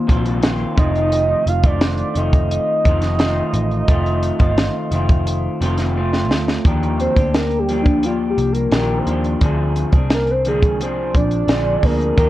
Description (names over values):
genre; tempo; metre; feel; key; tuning
indie pop, bedroom pop; 87 BPM; 4/4; straight; Eb major; A4 = 441 Hz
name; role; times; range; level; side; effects
electric guitar through a small old amp; accompaniment; 0.0-12.3 s; F2 to Ab4; -21 LUFS; left 1 dB; wide subtle chorus, warbly pitch drift
vintage muted picked electric bass; bass; 0.1-12.3 s; F1 to Eb2; -21 LUFS; equal; tube saturation
compact cocktail drum kit; drums; 0.1-12.3 s; hi-hat, kick drum, snare drum; -17 LUFS; equal; none
soft octave-layered synth lead; melody; 0.8-12.3 s; D4 to F5; -20 LUFS; right 1 dB; phaser, lush chorus, analog delay
room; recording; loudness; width
moderate studio reverb, RT60 0.5 s; worn, warbling old tape, cassette tape, warbly pitch drift; -15 LUFS; side -15 dB against mid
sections
0.0-6.7 A section; 6.7-12.3 B section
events
drum fill 6.0-6.7; soft synth lead solo 6.7-12.3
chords
0.0 Cm7; 0.8 F7; 6.7 Ebmaj9; 9.4 Bb9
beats
0.43 | 1.12 1.81 2.51 3.20 | 3.89 4.58 5.27 5.96 | 6.65 7.34 8.04 8.73 | 9.42 10.11 10.80 11.49 | 12.18